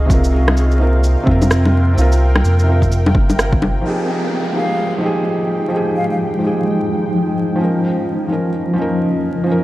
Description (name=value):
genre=future garage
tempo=128 BPM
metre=4/4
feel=swing 61% on 16ths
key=F minor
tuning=A4 = 440 Hz
part: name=felt-muted upright piano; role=accompaniment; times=0.0-9.6 s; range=C3 to Bb4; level=-19 LUFS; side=right 1 dB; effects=sidechain pumping, analog delay
part: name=granular cloud pad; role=sustained chords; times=0.0-9.6 s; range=F3 to C6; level=-21 LUFS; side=equal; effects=built-in reverb, sidechain pumping
part: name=soft dub sub bass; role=bass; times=0.0-3.8 s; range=G1 to F2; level=-14 LUFS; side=equal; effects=none
part: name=electronic kick drum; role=drums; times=0.1-3.6 s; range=none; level=-17 LUFS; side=equal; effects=overdrive, studio reverb
part: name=electronic shaker, rim click and bongos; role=drums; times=0.1-3.7 s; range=none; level=-18 LUFS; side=left 1 dB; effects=overdrive, studio reverb
part: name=downlifter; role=sound effects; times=3.9-7.6 s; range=none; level=-27 LUFS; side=equal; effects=none
part: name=breathy concert flute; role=melody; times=4.6-6.2 s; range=F5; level=-26 LUFS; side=left 2 dB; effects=tape echo
room=moderate lush hall reverb, RT60 1.9 s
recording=vinyl crackle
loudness=-13 LUFS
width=side -16 dB against mid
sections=0.0-3.9 A section; 3.9-9.6 B section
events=none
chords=0.1 C7sus4; 3.9 Fm9; 7.6 Db6/F